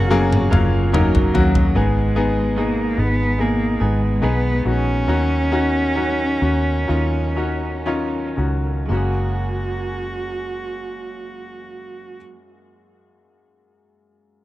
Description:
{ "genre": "pop ballad", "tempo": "57-74 BPM", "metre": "4/4", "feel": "straight", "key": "F# major", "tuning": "A4 = 440 Hz", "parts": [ { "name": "rich cello", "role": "melody", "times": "0.0-12.2 s", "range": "F#3 to F#4", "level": "-24 LUFS", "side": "right 2 dB", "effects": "none" }, { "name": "dark French horn section", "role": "second line", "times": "0.0-1.8 s", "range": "C#4 to F#4", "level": "-27 LUFS", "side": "right 7 dB", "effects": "none" }, { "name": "clear upright piano", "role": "accompaniment", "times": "0.0-14.4 s", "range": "F#2 to E#5", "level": "-22 LUFS", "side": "left 4 dB", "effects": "none" }, { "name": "chorused pulse-width pad", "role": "sustained chords", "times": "0.0-1.7 s", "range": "A#4 to C#6", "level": "-36 LUFS", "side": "right 1 dB", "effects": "none" }, { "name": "direct-recorded clean electric guitar", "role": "arpeggios", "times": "0.0-12.5 s", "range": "G#2 to A#4", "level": "-31 LUFS", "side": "right 7 dB", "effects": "wide subtle chorus, tape echo" }, { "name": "vintage muted fingered electric bass", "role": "bass", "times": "0.0-12.2 s", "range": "F#1 to D#2", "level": "-21 LUFS", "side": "equal", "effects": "none" }, { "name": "toms", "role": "drums", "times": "0.3-1.7 s", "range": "none", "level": "-20 LUFS", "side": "equal", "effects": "none" } ], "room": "little or no reverb", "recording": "dry, close 1970s-style studio recording", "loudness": "-17 LUFS", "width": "side -15 dB against mid", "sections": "0.0-1.8 A section; 1.8-8.9 B section; 8.9-13.1 C section", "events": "drum fill 0.0-1.8; slowing down 1.8-8.9", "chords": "0.0 F#; 1.8 G#m; 5.1 D#m7; 8.9 F#add9", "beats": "0.11 0.94 | 1.76 2.57 3.39 4.23 | 5.08 5.96 6.89 7.86 | 8.89 9.94 10.98 12.03" }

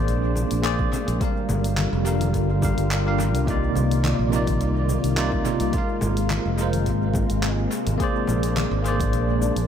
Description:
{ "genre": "sunset chillout", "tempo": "106 BPM", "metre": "4/4", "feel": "swing 53% on 16ths", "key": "C minor", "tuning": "A4 = 436 Hz", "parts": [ { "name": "bell-like tine electric piano", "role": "accompaniment", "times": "0.0-9.7 s", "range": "C3 to F5", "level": "-26 LUFS", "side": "equal", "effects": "medium stereo tremolo, auto-pan, analog delay" }, { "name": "soft string machine", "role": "sustained chords", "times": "0.0-9.7 s", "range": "C3 to D5", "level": "-28 LUFS", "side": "equal", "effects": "phaser, ensemble chorus" }, { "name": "modern bright fingered electric bass", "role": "bass", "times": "0.0-9.7 s", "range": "F1 to C2", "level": "-24 LUFS", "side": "equal", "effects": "none" }, { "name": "deep house drum kit", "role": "drums", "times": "0.1-9.7 s", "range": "handclaps, hi-hat, shaker", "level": "-32 LUFS", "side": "equal", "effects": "studio reverb, analog delay" }, { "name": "congas", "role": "percussion", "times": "0.4-9.5 s", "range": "none", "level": "-33 LUFS", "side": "left 4 dB", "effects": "none" }, { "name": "electronic kick drum", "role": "drums", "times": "0.8-9.1 s", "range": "none", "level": "-27 LUFS", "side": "equal", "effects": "studio reverb" } ], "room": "light reverb", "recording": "echo-heavy mix", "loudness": "-20 LUFS", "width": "side -8 dB against mid", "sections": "0.0-9.7 A section", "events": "none", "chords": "0.0 Bb9; 1.2 Gm7; 3.5 Cm11; 5.7 Ab69; 8.0 Bb9", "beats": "0.08 0.64 | 1.21 1.77 2.34 2.91 | 3.47 4.04 4.61 5.17 | 5.74 6.30 6.87 7.44 | 8.00 8.57 9.13" }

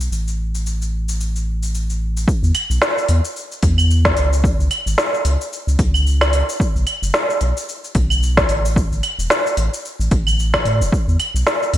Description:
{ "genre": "organic downtempo", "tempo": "111 BPM", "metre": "4/4", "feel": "swing 57% on 16ths", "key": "unclear", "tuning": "A4 = 440 Hz", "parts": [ { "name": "round analog bass", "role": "bass", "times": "0.0-11.8 s", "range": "E1 to A2", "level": "-17 LUFS", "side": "equal", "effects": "tube saturation" }, { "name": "organic electronic drum kit", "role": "drums", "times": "0.0-11.8 s", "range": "claves, hi-hat, shaker, snare drum", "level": "-20 LUFS", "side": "equal", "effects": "none" }, { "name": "electronic kick drum", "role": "drums", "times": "2.3-11.0 s", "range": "none", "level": "-19 LUFS", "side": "equal", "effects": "overdrive" } ], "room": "light reverb", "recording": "bright 1980s-style digital production", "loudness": "-16 LUFS", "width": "side -13 dB against mid", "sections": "0.0-2.3 A section; 2.3-11.8 B section", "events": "none", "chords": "none", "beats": "| 0.11 0.66 1.20 1.74 | 2.28 2.82 3.36 3.90 | 4.44 4.98 5.52 6.06 | 6.60 7.14 7.68 8.22 | 8.76 9.30 9.84 10.38 | 10.93 11.47" }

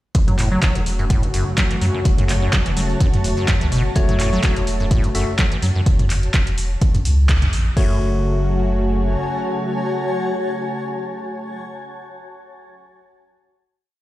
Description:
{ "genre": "acid house", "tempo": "126 BPM", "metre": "4/4", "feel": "swing 54% on 16ths", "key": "F# minor", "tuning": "A4 = 441 Hz", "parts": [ { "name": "warm analog pad", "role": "sustained chords", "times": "0.1-11.6 s", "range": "C#3 to F#4", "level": "-27 LUFS", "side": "equal", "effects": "chorus, sidechain pumping" }, { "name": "acid bass, square", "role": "riff", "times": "0.1-8.0 s", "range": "F#1 to F#3", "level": "-24 LUFS", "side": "equal", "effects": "tube saturation, sidechain pumping, tape echo" }, { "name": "saturated sub bass", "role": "bass", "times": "0.1-9.2 s", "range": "E1 to F#2", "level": "-20 LUFS", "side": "equal", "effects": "sidechain pumping" }, { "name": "dusty soul sampler-style drum kit", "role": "drums", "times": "0.1-5.7 s", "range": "hi-hat, snare drum", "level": "-37 LUFS", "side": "left 1 dB", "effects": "none" }, { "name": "electro analog drum machine", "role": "drums", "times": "0.1-7.9 s", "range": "crash cymbal, handclaps, hi-hat, toms", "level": "-24 LUFS", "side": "right 1 dB", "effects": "none" }, { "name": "electronic kick drum", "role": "drums", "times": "0.1-7.9 s", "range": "none", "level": "-17 LUFS", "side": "equal", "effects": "none" }, { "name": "granular cloud pad", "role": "texture", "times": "1.3-11.8 s", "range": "F#4 to A5", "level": "-28 LUFS", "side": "left 1 dB", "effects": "built-in reverb, sidechain pumping" }, { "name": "barky tine electric piano", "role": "stabs", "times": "4.0-11.6 s", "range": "A3 to E5", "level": "-26 LUFS", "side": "left 2 dB", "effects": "overdrive, vintage 12-bit sampler grit, tape echo" } ], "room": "little or no reverb", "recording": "played on a big sound system in a bare room, large studio reverb", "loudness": "-16 LUFS", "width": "side -16 dB against mid", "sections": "0.1-7.8 groove; 7.8-11.6 final chord", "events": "band accent 7.3", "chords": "0.1 F#m", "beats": "| 0.15 0.62 1.10 1.58 | 2.05 2.53 3.01 3.48 | 3.96 4.43 4.91 5.39 | 5.86 6.34 6.82 7.29 | 7.77 8.24 8.72 9.20 | 9.67 10.15 10.62 11.10" }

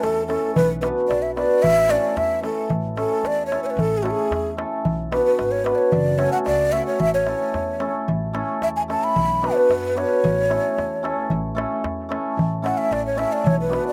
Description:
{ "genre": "balkan folk, Balkan wedding band", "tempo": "112 BPM", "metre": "2/4", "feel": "straight", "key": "A major", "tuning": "A4 = 440 Hz", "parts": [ { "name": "breathy ney", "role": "melody", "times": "0.0-13.9 s", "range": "F#4 to B5", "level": "-24 LUFS", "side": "equal", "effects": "slapback echo" }, { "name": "upright bass", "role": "bass", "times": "0.0-13.8 s", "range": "F#1 to F#2", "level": "-33 LUFS", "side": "equal", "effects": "none" }, { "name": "darbuka", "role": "percussion", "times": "0.0-13.9 s", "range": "none", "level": "-27 LUFS", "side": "equal", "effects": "none" }, { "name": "cimbalom", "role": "accompaniment", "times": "0.3-13.9 s", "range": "A3 to B4", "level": "-26 LUFS", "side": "equal", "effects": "none" } ], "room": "little or no reverb", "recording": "recorded outdoors, with no room sound", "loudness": "-21 LUFS", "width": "mono", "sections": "0.0-2.7 A section; 2.7-13.9 B section", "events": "ney solo 2.7-13.9", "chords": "0.0 A; 0.6 Bm; 1.6 A; 4.9 Bm; 5.9 F#m; 7.0 A; 9.2 Bm; 10.2 A", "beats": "0.04 | 0.57 1.10 | 1.63 2.17 | 2.70 3.24 | 3.78 4.32 | 4.85 5.39 | 5.93 6.47 | 7.01 7.55 | 8.09 8.63 | 9.17 9.71 | 10.24 10.78 | 11.32 11.85 | 12.39 12.92 | 13.46" }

